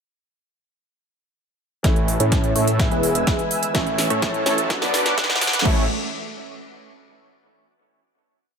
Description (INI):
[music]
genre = EDM, festival progressive house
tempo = 126 BPM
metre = 4/4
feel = straight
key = A major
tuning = A4 = 438 Hz
[part]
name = clear grand piano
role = accompaniment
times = 1.8-5.8 s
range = E3 to F#4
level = -27 LUFS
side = right 1 dB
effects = sidechain pumping, tape echo
[part]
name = lush unison pad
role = sustained chords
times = 1.8-5.9 s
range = C#4 to E6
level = -28 LUFS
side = equal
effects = chorus, sidechain pumping
[part]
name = supersaw stab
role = riff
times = 1.8-5.8 s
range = G#3 to D5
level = -24 LUFS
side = equal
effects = sidechain pumping, low-pass filter, tape echo
[part]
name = wide detuned saw bass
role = bass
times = 1.8-5.9 s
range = E1 to A2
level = -26 LUFS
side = equal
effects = chorus, sidechain pumping
[part]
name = big-room dance drum kit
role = drums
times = 1.8-5.7 s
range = crash cymbal, hi-hat, snare drum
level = -24 LUFS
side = right 1 dB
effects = none
[part]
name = electronic kick drum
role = drums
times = 1.8-5.7 s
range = none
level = -22 LUFS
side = equal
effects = none
[part]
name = riser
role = sound effects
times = 3.5-5.7 s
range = none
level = -32 LUFS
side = right 2 dB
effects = none
[sound]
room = light reverb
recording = high-pass filter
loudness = -18 LUFS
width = side -6 dB against mid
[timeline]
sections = 1.8-5.7 build; 5.7-7.6 final chord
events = build-up 1.8-5.7; drum fill 1.8-5.7; filter sweep on supersaw synth 1.8-5.7; filter sweep 1.8-5.7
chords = 1.8 A; 2.8 E; 3.7 A; 4.7 Bm; 5.7 A